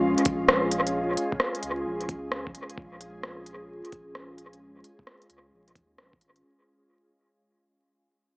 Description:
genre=future garage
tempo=131 BPM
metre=4/4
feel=swing 66% on 16ths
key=Bb minor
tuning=A4 = 440 Hz
part: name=ethereal airy pad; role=sustained chords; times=0.0-6.4 s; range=Ab3 to Ab4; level=-28 LUFS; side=equal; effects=ensemble chorus, built-in reverb, phaser, sidechain pumping
part: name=soft dub sub bass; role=bass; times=0.0-6.4 s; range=F1 to Eb2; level=-39 LUFS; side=equal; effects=sidechain pumping
part: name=organic electronic drum kit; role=drums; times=0.2-6.4 s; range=hi-hat, rim click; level=-26 LUFS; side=equal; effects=dub echo
part: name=electronic kick drum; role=drums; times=0.3-6.2 s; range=none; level=-31 LUFS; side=equal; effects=overdrive
room=moderate spring reverb, RT60 2.5 s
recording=echo-heavy mix, vinyl crackle, small speaker sound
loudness=-24 LUFS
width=side -28 dB against mid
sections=0.0-6.4 A section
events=fade-out 0.0-6.4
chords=0.0 Bbm7

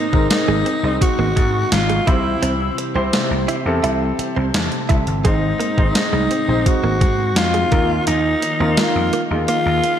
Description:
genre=1980s-style pop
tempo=85 BPM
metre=4/4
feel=straight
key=unclear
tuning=A4 = 441 Hz
part: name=raspy alto saxophone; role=melody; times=0.0-10.0 s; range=Eb4 to Gb4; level=-20 LUFS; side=equal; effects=digital delay
part: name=warm baby grand piano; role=accompaniment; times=0.0-10.0 s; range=Ab2 to Eb5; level=-24 LUFS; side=equal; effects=none
part: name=string machine, cellos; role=sustained chords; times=0.0-10.0 s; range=C3 to Bb4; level=-28 LUFS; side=left 1 dB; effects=ensemble chorus
part: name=direct-recorded clean electric guitar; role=riff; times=0.0-9.9 s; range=Ab3 to E4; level=-26 LUFS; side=right 5 dB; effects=analog chorus, digital delay
part: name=vintage slap bass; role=bass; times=0.1-9.8 s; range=G1 to Ab2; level=-22 LUFS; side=equal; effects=none
part: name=clean 12-bit digital drum machine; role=drums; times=0.1-10.0 s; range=hi-hat, kick drum, snare drum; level=-20 LUFS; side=equal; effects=none
room=moderate lush hall reverb, RT60 1.7 s, digital ambience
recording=bright 1980s-style digital production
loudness=-15 LUFS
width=side -9 dB against mid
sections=0.0-10.0 A section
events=none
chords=0.0 Ab; 2.1 C; 5.2 Ab; 7.7 Ebsus2

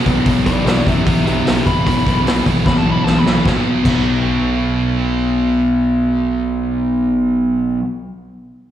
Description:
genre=punk rock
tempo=150 BPM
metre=4/4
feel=straight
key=unclear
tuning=A4 = 439 Hz
part: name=crunchy overdriven guitar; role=riff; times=0.0-7.8 s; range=E2 to B3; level=-20 LUFS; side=left 9 dB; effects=slapback echo
part: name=sludgy distorted guitar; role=riff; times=0.0-7.8 s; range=E2 to B3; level=-18 LUFS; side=right 5 dB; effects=overdrive
part: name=fuzz picked electric bass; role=bass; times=0.1-7.8 s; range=F#1 to F#2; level=-20 LUFS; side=equal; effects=overdrive
part: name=raw garage drum kit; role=drums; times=0.1-4.0 s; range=crash cymbal, hi-hat, kick drum, snare drum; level=-19 LUFS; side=equal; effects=none
part: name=overdriven electric guitar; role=melody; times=0.5-3.4 s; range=G4 to B5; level=-22 LUFS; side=left 1 dB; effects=slapback echo, ping-pong delay
room=little or no reverb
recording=live gig heard through the venue's PA, recital hall reverb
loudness=-13 LUFS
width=side -11 dB against mid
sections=0.0-3.4 A section; 3.4-6.6 B section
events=overdriven electric guitar solo 0.0-3.4; drum fill 2.7-3.4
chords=0.1 Em; 3.4 B5

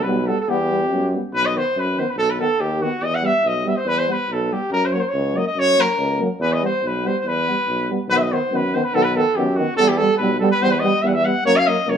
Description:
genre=balkan folk, Balkan brass band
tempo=142 BPM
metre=2/4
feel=straight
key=E harmonic minor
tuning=A4 = 440 Hz
part: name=clear trumpet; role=melody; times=0.0-12.0 s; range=F#4 to F#5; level=-19 LUFS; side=equal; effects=none
part: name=clear tuba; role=bass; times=0.0-12.0 s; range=B1 to F#2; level=-24 LUFS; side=equal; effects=none
part: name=warm euphonium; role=accompaniment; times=0.1-11.9 s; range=A#3 to B3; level=-26 LUFS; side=left 4 dB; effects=none
part: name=warm euphonium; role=accompaniment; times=0.1-12.0 s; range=D#3 to G3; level=-25 LUFS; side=right 4 dB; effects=none
room=wet studio reverb, RT60 0.9 s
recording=band playing live in one room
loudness=-17 LUFS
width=side -8 dB against mid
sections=0.0-1.3 A section; 1.3-8.1 B section; 8.1-12.0 B section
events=none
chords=0.0 Em; 1.3 B; 3.0 Em; 4.7 F#; 6.4 Em; 8.1 B; 9.8 Em; 11.5 F#

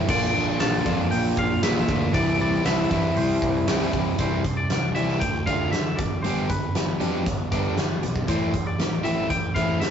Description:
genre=indie rock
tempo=117 BPM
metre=4/4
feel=straight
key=C major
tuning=A4 = 441 Hz
part: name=crunchy overdriven guitar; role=riff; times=0.0-9.9 s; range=Bb2 to G4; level=-24 LUFS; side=equal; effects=none
part: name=fuzz picked electric bass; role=bass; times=0.0-9.9 s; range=G1 to D3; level=-29 LUFS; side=equal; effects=overdrive
part: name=twangy electric guitar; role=melody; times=0.1-9.9 s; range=B4 to A5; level=-29 LUFS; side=left 1 dB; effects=spring reverb
part: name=big rock drum kit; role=drums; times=0.1-9.9 s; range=crash cymbal, hi-hat, kick drum, snare drum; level=-26 LUFS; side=equal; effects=none
part: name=egg shaker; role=percussion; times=0.1-4.1 s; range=none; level=-56 LUFS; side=right 5 dB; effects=none
room=moderate studio reverb, RT60 0.6 s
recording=rough rehearsal-room recording, warm saturation, nothing above 7.7 kHz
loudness=-21 LUFS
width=side -8 dB against mid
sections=0.0-4.2 A section; 4.2-9.9 B section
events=none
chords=0.1 Bb; 2.1 C; 5.2 Dm; 6.0 G; 8.3 Am

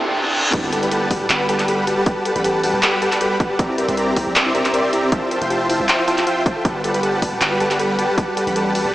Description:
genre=future bass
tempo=157 BPM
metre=4/4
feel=swing 54% on 16ths, half-time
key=G major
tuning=A4 = 440 Hz
part: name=glassy digital keys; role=accompaniment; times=0.0-0.6 s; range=C3 to A4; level=-31 LUFS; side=equal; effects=chorus, sidechain pumping, analog delay
part: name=reverse cymbal and sub drop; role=sound effects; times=0.0-2.1 s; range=none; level=-24 LUFS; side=equal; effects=none
part: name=dense compressed supersaw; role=riff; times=0.5-8.9 s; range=G3 to C6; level=-19 LUFS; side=equal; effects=cassette tape, sidechain pumping, analog delay
part: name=long sustained 808-style bass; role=bass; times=0.5-8.9 s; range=D1 to C2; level=-29 LUFS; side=equal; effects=sidechain pumping, high-pass filter
part: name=big-room dance drum kit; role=drums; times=0.5-8.8 s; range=crash cymbal, handclaps, hi-hat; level=-22 LUFS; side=equal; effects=none
part: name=electronic kick drum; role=drums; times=0.5-8.3 s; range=none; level=-20 LUFS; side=equal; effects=none
part: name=thumb-piano-like synth pluck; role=arpeggios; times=0.6-8.9 s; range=E4 to Bb4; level=-26 LUFS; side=left 1 dB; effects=chorus, sidechain pumping, analog delay
room=wet huge ambient reverb, RT60 4.5 s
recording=dreamy mix soaked in reverb, high-pass filter, small speaker sound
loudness=-16 LUFS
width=side -15 dB against mid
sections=0.5-8.9 A section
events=break 0.0-0.5; reverse cymbal 0.0-0.5; drop 0.5-8.9; impact 0.5-2.1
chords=0.0 Fmaj7 (rootless); 0.5 Gmaj9; 3.6 C7; 5.1 Fmaj9; 6.6 Gmaj9

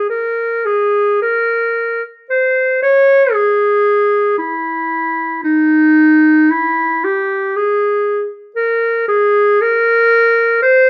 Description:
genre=classical, free, expressive piece for unaccompanied clarinet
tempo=53-61 BPM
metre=4/4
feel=rubato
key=Ab major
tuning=A4 = 437 Hz
part: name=clear clarinet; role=solo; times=0.0-10.9 s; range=Eb4 to Db5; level=-14 LUFS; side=equal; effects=none
room=moderate large studio reverb, RT60 0.9 s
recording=none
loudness=-14 LUFS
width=mono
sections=0.0-10.9 A section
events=none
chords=none

